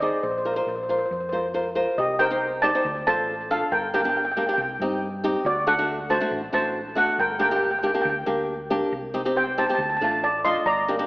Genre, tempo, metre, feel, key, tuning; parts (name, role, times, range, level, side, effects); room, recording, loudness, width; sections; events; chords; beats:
calypso; 138 BPM; 4/4; straight; G minor; A4 = 439 Hz
steel pan; melody; 0.0-11.1 s; F#4 to C6; -23 LUFS; equal; tape echo
flamenco guitar; accompaniment; 0.0-11.1 s; A3 to C5; -25 LUFS; equal
hollow-body short-scale fingered electric bass; bass; 0.0-11.1 s; G1 to G2; -38 LUFS; equal
wet recital hall reverb, RT60 1.4 s; AM radio sound; -21 LUFS; side -23 dB against mid
0.0-2.0 A section; 2.0-11.1 B section
0.2 Bbsus2; 2.0 Cm; 2.8 Dm; 3.7 Gm; 4.6 Cm; 5.5 D; 7.2 Gm; 8.9 Cm; 9.8 Dm
| 0.24 0.67 1.11 1.54 | 1.98 2.41 2.85 3.28 | 3.72 4.15 4.58 5.02 | 5.45 5.89 6.32 6.75 | 7.19 7.62 8.05 8.49 | 8.92 9.36 9.79 10.22 | 10.65